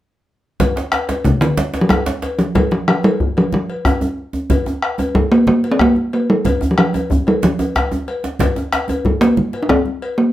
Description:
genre	west african traditional, West African drum ensemble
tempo	123 BPM (dotted quarters)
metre	12/8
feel	straight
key	Bb major pentatonic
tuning	A4 = 445 Hz
part	bombo	percussion	0.6-9.9 s	none	-19 LUFS	left 1 dB	none
part	congas	percussion	0.6-10.0 s	none	-23 LUFS	right 2 dB	none
part	cowbell	percussion	0.6-10.2 s	none	-26 LUFS	left 3 dB	none
part	djembe	percussion	0.6-10.1 s	none	-27 LUFS	left 5 dB	none
part	djembe	percussion	0.6-9.4 s	none	-21 LUFS	right 1 dB	none
part	talking drum	melody	1.2-10.3 s	C3 to D4	-14 LUFS	equal	none
room	moderate studio reverb, RT60 0.7 s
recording	none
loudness	-14 LUFS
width	side -14 dB against mid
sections	0.6-10.3 A section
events	none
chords	none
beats	| 0.60 1.09 1.57 2.06 | 2.55 3.04 3.53 4.01 | 4.50 4.99 5.48 5.96 | 6.45 6.94 7.42 7.91 | 8.40 8.89 9.37 9.86

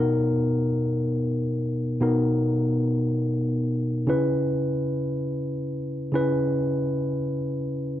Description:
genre	disco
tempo	free time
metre	none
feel	none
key	B major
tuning	A4 = 440 Hz
part	tine electric piano	solo	0.0-8.0 s	B2 to B4	-23 LUFS	equal	none
room	light reverb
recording	none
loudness	-23 LUFS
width	side -12 dB against mid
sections	0.0-8.0 A section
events	none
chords	0.0 Bmaj7; 4.1 C#m7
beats	free time

